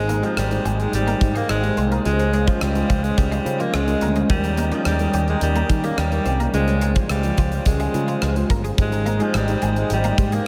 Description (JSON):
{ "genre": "1980s-style pop", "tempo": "107 BPM", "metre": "4/4", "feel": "straight", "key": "Ab major", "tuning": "A4 = 441 Hz", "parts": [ { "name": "bright alto saxophone", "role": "melody", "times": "0.0-10.5 s", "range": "F3 to Bb3", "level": "-27 LUFS", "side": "equal", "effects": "diffuse ambient delay" }, { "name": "mellow FM electric piano", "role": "accompaniment", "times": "0.0-10.5 s", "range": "Ab2 to Eb5", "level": "-29 LUFS", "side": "equal", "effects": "chorus, phaser" }, { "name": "brassy analog pad", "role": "sustained chords", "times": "0.0-10.5 s", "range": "Db4 to G5", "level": "-31 LUFS", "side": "equal", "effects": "chorus" }, { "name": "picked electric bass", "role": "bass", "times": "0.0-10.4 s", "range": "G1 to Eb3", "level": "-25 LUFS", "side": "equal", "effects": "none" }, { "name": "twelve-string electric guitar", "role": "riff", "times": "0.1-10.4 s", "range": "F3 to C4", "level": "-32 LUFS", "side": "equal", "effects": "none" }, { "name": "gated 80s drum kit", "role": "drums", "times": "0.1-10.5 s", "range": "hi-hat, kick drum, rim click", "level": "-26 LUFS", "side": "equal", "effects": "none" } ], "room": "wet cathedral reverb, RT60 7.5 s", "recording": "dreamy mix soaked in reverb", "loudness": "-20 LUFS", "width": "mono", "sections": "0.0-10.5 A section", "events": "none", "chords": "0.0 Abmaj7; 2.1 Dbmaj7; 4.3 Eb7; 6.5 Dbmaj7; 8.8 Abmaj7", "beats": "0.37 0.93 1.49 | 2.06 2.62 3.18 3.74 | 4.30 4.86 5.42 5.98 | 6.54 7.10 7.66 8.22 | 8.78 9.35 9.91 10.47" }